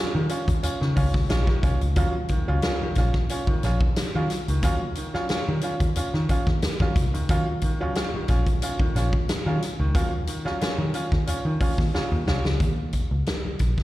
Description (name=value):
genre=funk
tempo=90 BPM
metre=4/4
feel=straight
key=Eb dorian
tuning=A4 = 443 Hz
part: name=bright upright piano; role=stabs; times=0.0-12.4 s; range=Eb3 to F4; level=-29 LUFS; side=right 1 dB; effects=slapback echo
part: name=vintage muted picked electric bass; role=bass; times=0.1-13.7 s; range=Bb1 to Eb3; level=-24 LUFS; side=equal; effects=none
part: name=swinging big-band drum kit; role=drums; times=0.3-13.8 s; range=hi-hat, kick drum, snare drum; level=-25 LUFS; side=equal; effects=none
room=studio ambience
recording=live gig heard through the venue's PA, recital hall reverb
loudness=-22 LUFS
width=side -16 dB against mid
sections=0.0-12.6 A section; 12.6-13.8 B section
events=drum fill 11.9-12.6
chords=0.0 Eb7sus2; 12.6 Eb5